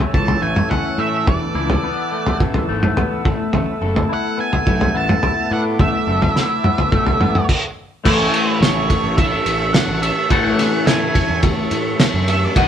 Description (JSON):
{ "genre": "psychedelic rock", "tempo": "106 BPM", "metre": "4/4", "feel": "straight", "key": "unclear", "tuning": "A4 = 439 Hz", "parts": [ { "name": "overdriven combo organ", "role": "sustained chords", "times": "0.0-12.7 s", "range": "B3 to E5", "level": "-28 LUFS", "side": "right 6 dB", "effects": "none" }, { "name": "twangy electric guitar", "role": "riff", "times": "0.0-12.7 s", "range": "A2 to A4", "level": "-22 LUFS", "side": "left 4 dB", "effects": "phaser" }, { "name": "cloth-damped thuddy drum kit", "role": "drums", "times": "0.0-12.7 s", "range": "crash cymbal, kick drum, ride cymbal, snare drum, toms", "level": "-17 LUFS", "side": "equal", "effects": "none" }, { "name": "octave-fuzz lead guitar", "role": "melody", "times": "0.1-12.7 s", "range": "C#5 to A5", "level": "-22 LUFS", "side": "right 4 dB", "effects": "distortion" }, { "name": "fuzz picked electric bass", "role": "bass", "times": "0.1-12.7 s", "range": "E1 to A2", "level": "-23 LUFS", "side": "equal", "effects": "overdrive" } ], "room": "moderate stone room reverb, RT60 1.0 s", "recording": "band playing live in one room", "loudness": "-15 LUFS", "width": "side -9 dB against mid", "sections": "0.0-8.1 A section; 8.1-12.7 B section", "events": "stop 7.5-8.1", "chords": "0.0 A; 1.3 Esus4; 3.3 Asus2; 8.1 A", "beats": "0.15 0.71 | 1.28 1.84 2.41 2.97 | 3.54 4.10 4.67 5.23 | 5.79 6.36 6.92 7.49 | 8.05 8.61 9.18 9.74 | 10.30 10.87 11.43 12.00 | 12.56" }